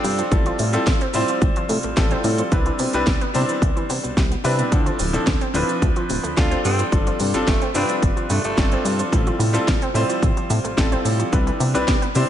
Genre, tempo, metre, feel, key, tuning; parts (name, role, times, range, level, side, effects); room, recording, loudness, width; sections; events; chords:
nu-disco, nu disco; 109 BPM; 4/4; straight; A4 = 440 Hz
growling tenor saxophone; melody; 0.0-0.4, 6.4-8.9 s; A3 to F4; -28 LUFS; right 1 dB; tape echo
bright concert grand piano; accompaniment; 0.0-12.3 s; F3 to C5; -23 LUFS; left 1 dB; sidechain pumping, diffuse ambient delay
analog pluck; arpeggios; 0.0-12.2 s; B2 to E4; -28 LUFS; equal; chorus, cassette tape, sidechain pumping, tape echo
chorused synth bass; bass; 0.0-12.2 s; D1 to C3; -23 LUFS; equal
house drum kit; drums; 0.0-12.3 s; hi-hat, shaker, snare drum; -27 LUFS; right 1 dB; small room ambience
electronic kick drum; drums; 0.3-12.0 s; -20 LUFS; equal; small room ambience
light reverb, digital ambience; nothing above 10.4 kHz; -17 LUFS; side -10 dB against mid
0.0-12.3 A section
0.3 Fmaj7/A; 2.5 Cmaj7; 4.7 Dm7; 6.6 G7sus4; 9.1 Fmaj7/A; 11.3 Cmaj7